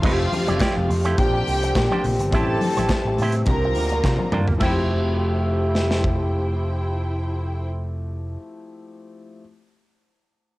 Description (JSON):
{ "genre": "disco", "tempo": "105 BPM", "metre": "4/4", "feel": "straight", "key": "F major", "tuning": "A4 = 439 Hz", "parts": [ { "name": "clear symphonic string section", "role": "second line", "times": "0.0-7.7 s", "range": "E4 to Bb5", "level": "-29 LUFS", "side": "equal", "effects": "cassette tape" }, { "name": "clear concert grand piano", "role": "accompaniment", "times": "0.0-9.4 s", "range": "F3 to G4", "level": "-31 LUFS", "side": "left 2 dB", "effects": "cassette tape" }, { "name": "electric guitar with an envelope filter", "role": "accompaniment", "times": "0.0-8.4 s", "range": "A3 to D5", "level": "-29 LUFS", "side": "right 3 dB", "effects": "cassette tape" }, { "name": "clear French horn section", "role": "sustained chords", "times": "0.0-7.7 s", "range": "D3 to G4", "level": "-27 LUFS", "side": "equal", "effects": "cassette tape" }, { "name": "fingered electric bass", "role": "bass", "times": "0.0-8.4 s", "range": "F1 to C3", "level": "-24 LUFS", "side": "equal", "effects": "none" }, { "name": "modern studio drum kit", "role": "drums", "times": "0.0-6.2 s", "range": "crash cymbal, hi-hat, kick drum, snare drum, toms", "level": "-24 LUFS", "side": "equal", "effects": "cassette tape" }, { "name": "congas", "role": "percussion", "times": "0.3-4.9 s", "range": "none", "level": "-31 LUFS", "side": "left 2 dB", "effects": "none" }, { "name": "group handclap", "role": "percussion", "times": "0.6-4.9 s", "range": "none", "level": "-39 LUFS", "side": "left 2 dB", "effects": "none" } ], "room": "studio reverb", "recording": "home recording on cassette", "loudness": "-19 LUFS", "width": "side -18 dB against mid", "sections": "0.0-4.6 A section; 4.6-6.9 B section", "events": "drum fill 4.0-4.6", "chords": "0.0 Fmaj9; 1.2 Bb69; 2.3 Am7; 3.5 C9sus4; 4.6 Fmaj9", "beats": "| 0.03 0.60 1.18 1.75 | 2.32 2.89 3.47 4.04 | 4.61 5.18 5.75 6.33" }